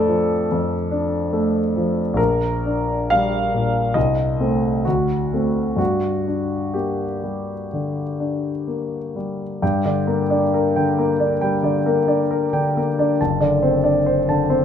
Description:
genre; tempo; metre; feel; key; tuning
classical, romantic character piece for solo piano; 61-72 BPM; 4/4; rubato; G minor; A4 = 440 Hz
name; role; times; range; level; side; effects
warm grand piano; solo; 0.0-14.6 s; F#1 to A5; -18 LUFS; left 1 dB; none
room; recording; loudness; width
moderate large studio reverb, RT60 1.0 s; minimal, uncompressed stereo recording; -18 LUFS; side -8 dB against mid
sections
0.0-9.6 A section; 9.6-14.6 B section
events
none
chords
0.0 Dm/F; 2.2 Gm/Bb; 4.0 Adim/C; 4.8 D7; 5.8 Gm; 13.2 D7/F#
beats
0.49 1.33 | 2.18 3.09 3.95 4.85 | 5.79 6.75 7.71 8.67 | 9.61 10.52 11.40 12.30 | 13.19 14.06

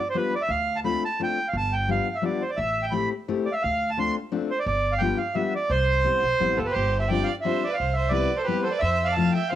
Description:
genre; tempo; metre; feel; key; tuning
musette waltz; 173 BPM; 3/4; straight; unclear; A4 = 439 Hz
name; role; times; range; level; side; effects
accordion; melody; 0.0-9.6 s; A4 to C6; -24 LUFS; right 2 dB; none
fingerpicked steel-string acoustic guitar; accompaniment; 0.1-9.6 s; F3 to G4; -27 LUFS; left 6 dB; cassette tape, plate reverb
upright bass; bass; 0.5-9.3 s; G1 to F2; -28 LUFS; equal; none
clear violin; second line; 6.6-9.6 s; F4 to F5; -31 LUFS; right 8 dB; cassette tape, plate reverb
room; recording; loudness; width
moderate studio reverb, RT60 0.5 s; home recording on cassette; -22 LUFS; side -11 dB against mid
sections
0.0-9.6 A section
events
none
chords
0.0 G7; 0.5 Dm7; 1.5 G7; 2.6 Am7; 3.6 Dm7; 4.7 G7; 5.7 Cmaj7; 6.8 G7sus4; 7.8 Cmaj7; 8.8 Fmaj7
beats
0.16 | 0.50 0.85 1.20 | 1.55 1.89 2.24 | 2.59 2.94 3.29 | 3.64 3.99 4.33 | 4.67 5.01 5.36 | 5.70 6.05 6.40 | 6.75 7.10 7.45 | 7.79 8.13 8.48 | 8.82 9.17 9.52

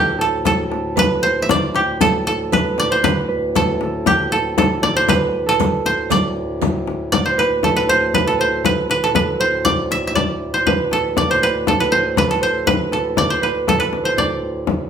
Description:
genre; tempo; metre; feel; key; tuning
medieval dance; 118 BPM; 2/4; straight; unclear; A4 = 440 Hz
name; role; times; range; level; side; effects
koto; melody; 0.0-14.9 s; G4 to E5; -18 LUFS; right 1 dB; none
concert harp; second line; 0.0-14.9 s; G4 to D5; -22 LUFS; right 4 dB; none
hand-pumped harmonium; drone; 0.0-14.9 s; D2 to A2; -26 LUFS; left 1 dB; none
frame drum; percussion; 0.2-14.9 s; none; -21 LUFS; left 5 dB; none
riq; percussion; 0.5-6.9 s; none; -26 LUFS; right 4 dB; none
room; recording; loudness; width
wet large studio reverb, RT60 0.9 s; band playing live in one room, faint mains hum; -15 LUFS; side -8 dB against mid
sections
0.0-7.1 A section; 7.1-14.9 B section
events
speeding up 0.0-14.9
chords
none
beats
0.46 | 0.97 1.49 | 2.00 2.52 | 3.03 3.55 | 4.06 4.57 | 5.08 5.59 | 6.11 6.62 | 7.12 7.63 | 8.14 8.65 | 9.15 9.66 | 10.16 10.67 | 11.17 11.67 | 12.17 12.67 | 13.17 13.67 | 14.17 14.67

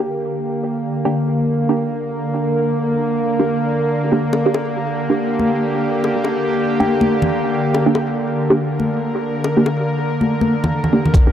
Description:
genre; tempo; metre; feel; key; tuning
deep dubstep; 141 BPM; 4/4; swing 60% on 16ths, half-time; G minor; A4 = 440 Hz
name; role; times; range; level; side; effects
bowed-like drone; sustained chords; 0.0-11.3 s; D3 to Bb4; -18 LUFS; equal; built-in reverb, vintage 12-bit sampler grit
filtered dub chord stab; stabs; 0.0-11.3 s; Bb3 to G4; -19 LUFS; right 2 dB; phaser, dub echo
bongos and congas; percussion; 4.3-11.1 s; none; -20 LUFS; left 2 dB; dub echo
electronic hi-hat; drums; 11.1-11.2 s; none; -33 LUFS; equal; overdrive, low-pass filter on hats, low-pass filter on snare, low-pass filter on room
electronic kick drum; drums; 11.1-11.2 s; none; -10 LUFS; equal; overdrive
room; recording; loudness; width
light reverb, digital ambience; dry, gritty hardware recording, faint mains hum; -16 LUFS; side -10 dB against mid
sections
0.0-11.1 A section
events
filter sweep on synth drone 0.0-11.1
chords
0.0 Gm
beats
0.08 0.50 | 0.93 1.35 1.78 2.21 | 2.63 3.06 3.48 3.91 | 4.33 4.76 5.18 5.61 | 6.04 6.46 6.89 7.31 | 7.74 8.16 8.59 9.01 | 9.44 9.87 10.29 10.72 | 11.14

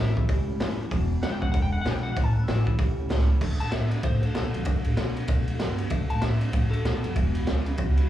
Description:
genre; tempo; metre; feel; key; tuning
rockabilly; 192 BPM; 4/4; swing 62% on 8ths; A major; A4 = 439 Hz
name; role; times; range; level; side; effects
electric guitar at the edge of break-up; melody; 0.0-7.1 s; A4 to A5; -35 LUFS; left 2 dB; lush chorus, slapback echo, analog delay
picked steel-string acoustic guitar; accompaniment; 0.0-8.1 s; E2 to F#4; -36 LUFS; left 7 dB; slapback echo
electric guitar through a small old amp; riff; 0.0-8.1 s; E2 to B3; -34 LUFS; right 3 dB; slapback echo
upright bass; bass; 0.0-8.0 s; E1 to B2; -26 LUFS; equal; none
raw garage drum kit; drums; 0.2-8.0 s; crash cymbal, hi-hat, kick drum, ride cymbal, snare drum; -27 LUFS; equal; none
room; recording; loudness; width
little or no reverb; live gig heard through the venue's PA, club reverb, small room ambience; -23 LUFS; side -12 dB against mid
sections
0.0-3.4 A section; 3.4-8.1 B section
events
clean electric guitar solo 0.0-3.4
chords
0.0 A; 0.9 E7; 2.2 A; 3.4 D; 7.2 E7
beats
0.29 0.60 | 0.91 1.23 1.54 1.85 | 2.17 2.48 2.79 3.10 | 3.42 3.73 4.04 4.35 | 4.67 4.98 5.29 5.60 | 5.92 6.23 6.54 6.85 | 7.17 7.48 7.79

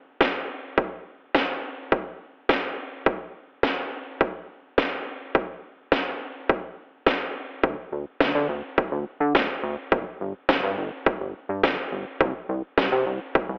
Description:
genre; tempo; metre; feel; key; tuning
synth-pop; 105 BPM; 4/4; straight; unclear; A4 = 440 Hz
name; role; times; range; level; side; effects
house drum kit; drums; 0.2-13.5 s; kick drum, snare drum; -26 LUFS; equal; overdrive
chorused synth bass; bass; 7.6-13.6 s; G1 to D3; -29 LUFS; equal; none
room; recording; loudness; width
moderate spring reverb, RT60 2.5 s; telephone sound; -26 LUFS; mono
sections
0.0-13.6 A section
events
none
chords
none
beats
0.21 | 0.78 1.35 1.92 2.49 | 3.06 3.63 4.21 4.78 | 5.35 5.92 6.49 7.06 | 7.63 8.21 8.78 9.35 | 9.92 10.49 11.06 11.63 | 12.21 12.78 13.35

